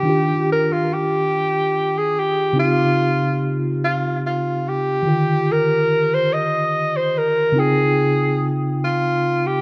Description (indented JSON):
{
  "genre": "R&B",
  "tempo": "48 BPM (dotted quarters)",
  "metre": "6/8",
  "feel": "straight",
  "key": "Eb major",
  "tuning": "A4 = 440 Hz",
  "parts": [
    { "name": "warm tenor saxophone", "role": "melody", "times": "0.0-9.6 s", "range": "F4 to Eb5", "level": "-21 LUFS", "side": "equal", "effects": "analog delay" },
    { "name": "mellow tine electric piano", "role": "accompaniment", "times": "0.0-9.6 s", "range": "Db3 to G5", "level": "-23 LUFS", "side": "equal", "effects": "analog delay" }
  ],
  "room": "light reverb, small room ambience",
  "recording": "echo-heavy mix",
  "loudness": "-19 LUFS",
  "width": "mono",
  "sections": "0.0-9.6 A section",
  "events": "none",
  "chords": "0.0 Ebmaj9; 2.5 Dbmaj9#11; 5.0 Ebmaj9; 7.5 Dbmaj9#11",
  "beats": "| 0.05 1.30 | 2.55 3.80 | 5.05 6.30 | 7.55 8.80"
}